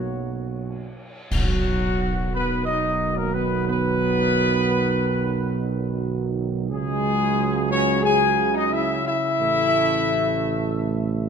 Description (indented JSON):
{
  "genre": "classical, ceremonial fanfare",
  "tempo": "89 BPM",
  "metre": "4/4",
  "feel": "straight",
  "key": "B major",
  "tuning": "A4 = 440 Hz",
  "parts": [
    { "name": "dark trumpet section", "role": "melody", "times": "0.0-11.3 s", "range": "F#4 to G#5", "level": "-24 LUFS", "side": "left 1 dB", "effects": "none" },
    { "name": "dark trombone section", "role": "sustained chords", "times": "0.0-11.3 s", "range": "F#2 to A#3", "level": "-29 LUFS", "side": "right 5 dB", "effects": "none" },
    { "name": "mellow French horn section", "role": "sustained chords", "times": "0.0-11.3 s", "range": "F#3 to G#4", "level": "-27 LUFS", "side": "left 5 dB", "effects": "none" },
    { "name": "dark tuba", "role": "bass", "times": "0.0-11.3 s", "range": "A1 to C#2", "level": "-26 LUFS", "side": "right 5 dB", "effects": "none" },
    { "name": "clash cymbals and concert bass drum", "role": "percussion", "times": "1.3-2.6 s", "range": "none", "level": "-28 LUFS", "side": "equal", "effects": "none" }
  ],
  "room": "moderate scoring stage reverb, RT60 1.6 s",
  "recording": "none",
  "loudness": "-20 LUFS",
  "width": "side -6 dB against mid",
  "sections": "0.0-1.3 A section; 1.3-11.3 B section",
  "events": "band accent 1.3-2.0",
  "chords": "0.0 F#/B; 1.3 B; 6.7 C#sus4; 9.4 A",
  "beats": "0.61 | 1.31 1.99 2.67 3.35 | 4.03 4.70 5.37 6.04 | 6.71 7.38 8.05 8.73 | 9.39 10.06 10.72"
}